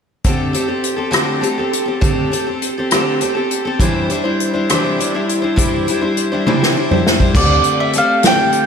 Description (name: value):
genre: folk rock and heartland rock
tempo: 68 BPM (dotted quarters)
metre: 6/8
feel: straight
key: unclear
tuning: A4 = 440 Hz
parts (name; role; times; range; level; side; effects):
- picked twelve-string acoustic guitar; accompaniment; 0.2-8.7 s; C3 to C5; -16 LUFS; left 1 dB; none
- unplugged drum kit; drums; 0.2-8.7 s; crash cymbal, hi-hat, kick drum, rim click, snare drum, toms; -17 LUFS; equal; none
- hollow-body short-scale fingered electric bass; bass; 7.3-7.6 s; D2; -16 LUFS; equal; none
- mandolin; melody; 7.4-8.7 s; D5 to G5; -14 LUFS; right 1 dB; analog delay
room: wet lush hall reverb, RT60 2.5 s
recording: big arena sound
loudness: -13 LUFS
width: side -6 dB against mid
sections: 0.2-7.3 A section; 7.3-8.7 B section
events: drum fill 6.5-7.3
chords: 0.2 D7sus4; 3.8 Cadd9; 7.3 D7sus4